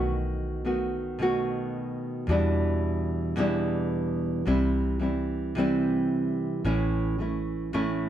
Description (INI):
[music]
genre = acoustic pop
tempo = 110 BPM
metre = 4/4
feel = straight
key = unclear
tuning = A4 = 441 Hz
[part]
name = nylon-string guitar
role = accompaniment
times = 0.0-8.1 s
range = E2 to F#4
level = -26 LUFS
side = right 1 dB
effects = none
[part]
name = vintage muted fingered electric bass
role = bass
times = 0.0-8.1 s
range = A1 to E2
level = -31 LUFS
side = left 1 dB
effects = none
[sound]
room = light reverb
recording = dark, warm production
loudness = -25 LUFS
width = side -11 dB against mid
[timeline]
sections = 0.0-8.1 A section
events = none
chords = 0.0 B7; 2.3 Em7; 4.5 C; 6.6 A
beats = | 0.10 0.64 1.19 1.73 | 2.28 2.82 3.37 3.91 | 4.46 5.00 5.55 6.10 | 6.64 7.19 7.73